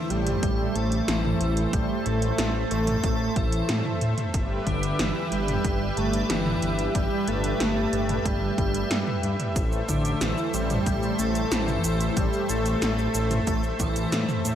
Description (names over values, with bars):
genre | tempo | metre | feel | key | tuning
synthwave | 92 BPM | 4/4 | straight | A minor | A4 = 444 Hz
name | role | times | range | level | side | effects
wide unison lead | melody | 0.0-14.4 s | D3 to A3 | -28 LUFS | equal | vintage 12-bit sampler grit, diffuse ambient delay
airy dreamy lead | second line | 0.0-14.4 s | D4 to A4 | -34 LUFS | left 1 dB | chorus, phaser, diffuse ambient delay, shimmer reverb
warm analog pad | sustained chords | 0.0-14.6 s | G3 to E5 | -30 LUFS | equal | chorus, sidechain pumping, shimmer reverb
dark detuned saw bass | bass | 0.1-14.6 s | G1 to A2 | -28 LUFS | equal | none
80s electronic pad drums | drums | 0.1-14.6 s | hi-hat, shaker, snare drum, toms | -31 LUFS | equal | gated reverb on snare and toms
electronic kick drum | drums | 0.4-13.9 s | none | -28 LUFS | equal | none
room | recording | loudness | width
moderate huge ambient reverb, RT60 7.1 s | dreamy mix soaked in reverb | -22 LUFS | side -10 dB against mid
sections
0.0-14.6 A section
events
none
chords
0.0 Am; 4.3 Em/G; 9.6 Am